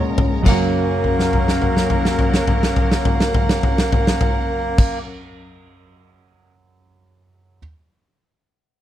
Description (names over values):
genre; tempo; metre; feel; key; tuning
pop ballad; 52 BPM; 4/4; straight; F# major; A4 = 437 Hz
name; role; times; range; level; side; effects
warm studio violin section; second line; 0.0-5.0 s; C#4 to A#5; -31 LUFS; left 2 dB; none
clear grand piano; accompaniment; 0.0-7.6 s; A#1 to G#5; -26 LUFS; right 4 dB; none
sweeping resonant pad; sustained chords; 0.0-5.0 s; A#2 to A#4; -25 LUFS; left 2 dB; chorus
direct-recorded clean electric guitar; arpeggios; 0.0-5.0 s; F#2 to A#4; -28 LUFS; left 11 dB; none
huge arena drum kit; drums; 0.2-6.5 s; crash cymbal, kick drum, snare drum, toms; -18 LUFS; equal; none
melodica; melody; 0.5-5.0 s; A#3; -23 LUFS; right 3 dB; slapback echo
room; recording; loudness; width
studio reverb; dry, close 1970s-style studio recording; -15 LUFS; side -12 dB against mid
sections
0.5-5.1 A section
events
grand piano fill 0.0-0.5; drum fill 0.0-0.5, 1.0-4.8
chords
0.5 F#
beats
| 0.46 1.61 2.77 3.92